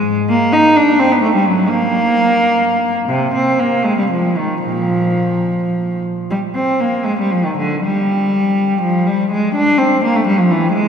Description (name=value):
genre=classical, baroque-style suite movement for unaccompanied cello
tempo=69-87 BPM (dotted quarters)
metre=6/8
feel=rubato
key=unclear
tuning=A4 = 442 Hz
part: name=rich cello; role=solo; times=0.0-10.9 s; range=Bb2 to Eb4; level=-13 LUFS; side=equal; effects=none
room=wet cathedral reverb, RT60 4.3 s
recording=recorded in a church or concert hall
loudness=-13 LUFS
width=side -7 dB against mid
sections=0.0-6.3 A section; 6.3-10.9 A section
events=none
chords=none